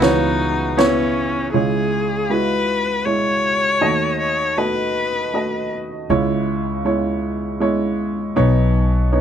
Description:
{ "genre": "acoustic folk-pop ballad", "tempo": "79 BPM", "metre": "3/4", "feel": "straight", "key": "C# minor", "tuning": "A4 = 441 Hz", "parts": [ { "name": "clear upright piano", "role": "melody", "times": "0.0-9.2 s", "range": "B1 to D#5", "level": "-19 LUFS", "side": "right 2 dB", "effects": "none" }, { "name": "clear viola", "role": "second line", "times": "0.0-5.7 s", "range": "C#4 to C#5", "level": "-20 LUFS", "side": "left 3 dB", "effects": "none" }, { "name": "picked swing-style acoustic guitar", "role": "arpeggios", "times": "0.0-1.0 s", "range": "B3 to F#4", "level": "-26 LUFS", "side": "right 2 dB", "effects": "none" }, { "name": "upright bass", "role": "bass", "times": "0.0-1.5, 6.1-9.2 s", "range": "B1 to C#2", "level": "-22 LUFS", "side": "left 1 dB", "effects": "none" }, { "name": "unplugged drum kit", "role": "drums", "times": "0.0-1.0 s", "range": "ride cymbal, snare drum", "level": "-23 LUFS", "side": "equal", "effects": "none" } ], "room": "light reverb", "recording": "none", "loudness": "-17 LUFS", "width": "side -9 dB against mid", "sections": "0.0-1.5 A section; 1.5-9.2 B section", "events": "viola solo 1.5-9.2", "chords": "0.0 C#m7; 1.5 C#m; 3.8 D#dim; 6.1 C#m; 8.4 Badd9" }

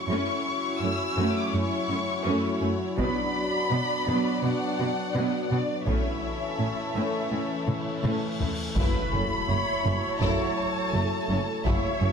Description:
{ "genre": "cinematic, hybrid orchestral and electronic film score", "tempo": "83 BPM", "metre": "4/4", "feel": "straight", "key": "F# minor", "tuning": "A4 = 444 Hz", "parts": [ { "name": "warm symphonic violin section", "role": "melody", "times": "0.0-12.1 s", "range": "D5 to E6", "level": "-32 LUFS", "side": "left 3 dB", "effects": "none" }, { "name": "clear symphonic violin section", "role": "second line", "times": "0.0-12.1 s", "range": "A3 to D5", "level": "-34 LUFS", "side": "left 2 dB", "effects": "none" }, { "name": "chorused pulse-width pad", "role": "sustained chords", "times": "0.0-12.1 s", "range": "E3 to C#5", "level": "-31 LUFS", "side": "left 1 dB", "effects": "none" }, { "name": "warm symphonic viola section", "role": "accompaniment", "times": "0.1-12.1 s", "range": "F#3 to C#5", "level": "-31 LUFS", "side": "right 2 dB", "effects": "none" }, { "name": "rich symphonic cello section", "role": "bass", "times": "0.1-12.1 s", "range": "F#2 to B2", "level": "-31 LUFS", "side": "right 2 dB", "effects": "none" }, { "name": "taiko ensemble", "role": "drums", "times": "3.0-12.1 s", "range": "none", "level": "-31 LUFS", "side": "left 1 dB", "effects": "none" }, { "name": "cymbal swell and impact", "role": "sound effects", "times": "7.8-11.7 s", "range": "none", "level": "-36 LUFS", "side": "left 1 dB", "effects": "none" }, { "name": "bright trombone section", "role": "sustained chords", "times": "8.8-11.9 s", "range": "C#3 to F#3", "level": "-39 LUFS", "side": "right 6 dB", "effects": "none" }, { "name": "dark French horn section", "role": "sustained chords", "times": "8.8-11.9 s", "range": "A3 to E4", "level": "-38 LUFS", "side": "left 7 dB", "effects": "none" }, { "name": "clear studio double bass section", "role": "bass", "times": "8.8-12.1 s", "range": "F#1", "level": "-32 LUFS", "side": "right 3 dB", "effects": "none" } ], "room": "moderate scoring stage reverb, RT60 1.9 s", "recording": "none", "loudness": "-24 LUFS", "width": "side -6 dB against mid", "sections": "0.0-8.8 A section; 8.8-12.1 B section", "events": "cymbal swell 7.8-8.8; drum fill 7.7-8.8; impact 8.8-11.7", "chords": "0.0 F#m7; 3.0 Bm; 5.9 A; 8.8 F#m7" }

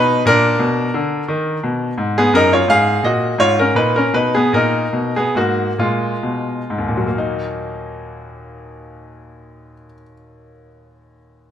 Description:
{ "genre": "classical, baroque-style suite movement for grand piano", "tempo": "42-58 BPM (dotted quarters)", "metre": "6/8", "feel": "rubato", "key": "Eb minor", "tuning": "A4 = 440 Hz", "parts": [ { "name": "bright grand piano", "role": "solo", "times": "0.0-11.5 s", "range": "Eb2 to F5", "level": "-15 LUFS", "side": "equal", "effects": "none" } ], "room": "moderate recital hall reverb, RT60 1.5 s", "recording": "close, detailed microphones", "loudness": "-14 LUFS", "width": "side -9 dB against mid", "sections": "0.0-7.2 A section; 7.2-11.5 B section", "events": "slowing down 1.3-7.2", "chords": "0.3 Bb; 1.3 Eb5; 2.3 Ebm/Gb; 3.4 Fdim/Ab; 4.5 Eb5/Bb; 5.8 Bb5; 7.2 Ebm" }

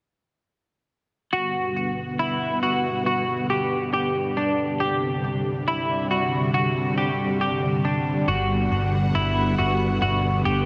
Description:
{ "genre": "dream pop", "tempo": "69 BPM", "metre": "4/4", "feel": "straight", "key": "G major", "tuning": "A4 = 440 Hz", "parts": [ { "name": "string machine, cellos", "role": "sustained chords", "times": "1.3-10.7 s", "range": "C3 to F#5", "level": "-27 LUFS", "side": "equal", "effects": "ensemble chorus" }, { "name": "semi-hollow electric guitar", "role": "arpeggios", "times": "1.3-10.7 s", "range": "D4 to G4", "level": "-26 LUFS", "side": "equal", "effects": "analog chorus, tape echo" }, { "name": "vintage muted picked electric bass", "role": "bass", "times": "8.3-10.7 s", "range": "G1", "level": "-28 LUFS", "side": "equal", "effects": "none" } ], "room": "wet huge ambient reverb, RT60 7.1 s", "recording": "none", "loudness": "-24 LUFS", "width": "mono", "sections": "1.3-10.7 A section", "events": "none", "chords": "1.3 Gmaj7; 4.8 Csus2; 8.3 Gmaj7" }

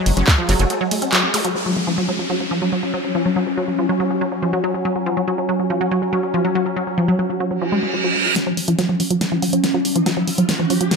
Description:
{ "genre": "psychedelic trance", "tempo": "141 BPM", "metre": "4/4", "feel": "straight", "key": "unclear", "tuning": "A4 = 440 Hz", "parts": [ { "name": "bubbling stepped-filter texture", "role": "sustained chords", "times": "0.0-11.0 s", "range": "F#3 to C#4", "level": "-23 LUFS", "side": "equal", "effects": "chorus, built-in reverb, sidechain pumping" }, { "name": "wide unison pluck", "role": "riff", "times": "0.0-11.0 s", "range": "E#3 to C#4", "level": "-20 LUFS", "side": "moving between left 4 dB and right 4 dB", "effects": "auto-pan, cassette tape, sidechain pumping, ping-pong delay" }, { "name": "tight sequencer bass", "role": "bass", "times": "0.1-0.7 s", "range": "F#1", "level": "-18 LUFS", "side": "equal", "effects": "none" }, { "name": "big-room dance drum kit", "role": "drums", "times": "0.1-1.5, 8.4-11.0 s", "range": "handclaps, hi-hat, ride cymbal, snare drum", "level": "-21 LUFS", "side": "equal", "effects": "none" }, { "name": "metallic wobble bass", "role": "second line", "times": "0.2-0.8 s", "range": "A3 to C#4", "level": "-32 LUFS", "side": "left 3 dB", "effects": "distortion, ensemble chorus, sidechain pumping, high-pass filter, dub echo" }, { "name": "zap, downlifter, reverse cymbal and riser", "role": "sound effects", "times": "1.3-11.0 s", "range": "none", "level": "-26 LUFS", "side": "right 2 dB", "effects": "none" } ], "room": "moderate plate reverb, RT60 2.0 s", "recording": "none", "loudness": "-17 LUFS", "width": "side -4 dB against mid", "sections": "0.0-1.6 A section; 1.6-8.4 B section; 8.4-11.0 C section", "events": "drop 0.0-1.6; break 0.7-1.6; band accent 1.1; filter sweep on synth arpeggio sound 1.6-8.4; reverse cymbal 7.7-8.4; build-up 8.4-11.0; drum fill 8.4-11.0; riser 8.4-11.0", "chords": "0.0 F#5" }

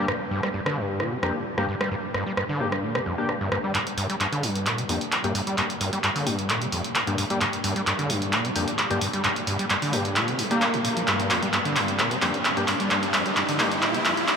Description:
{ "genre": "driving peak-time techno", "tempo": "131 BPM", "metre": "4/4", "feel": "straight", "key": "G minor", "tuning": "A4 = 440 Hz", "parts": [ { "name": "screaming distorted acid line", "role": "riff", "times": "0.0-14.2 s", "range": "F2 to Bb3", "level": "-27 LUFS", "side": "equal", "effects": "distortion, chorus, tape echo" }, { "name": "sync-sweep polysynth", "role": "stabs", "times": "0.0-13.7 s", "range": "Bb3 to G4", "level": "-31 LUFS", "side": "left 2 dB", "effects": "analog chorus, tape echo" }, { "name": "punchy analog drum machine", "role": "drums", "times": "0.1-14.4 s", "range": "handclaps, hi-hat, rim click", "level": "-25 LUFS", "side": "equal", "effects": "high-pass filter on snare, high-pass filter on hats, high-pass filter on room" }, { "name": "riser", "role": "sound effects", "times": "7.8-14.4 s", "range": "none", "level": "-32 LUFS", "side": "right 1 dB", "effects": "none" } ], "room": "wet huge ambient reverb, RT60 8.2 s", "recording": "dreamy mix soaked in reverb, high-pass filter", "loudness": "-22 LUFS", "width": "side -6 dB against mid", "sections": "0.0-3.7 A section; 3.7-14.4 B section", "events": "build-up 3.7-14.4; drum fill 3.7-14.4; filter sweep on analog polysynth 3.7-14.4; riser 7.8-14.4", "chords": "0.0 Gm" }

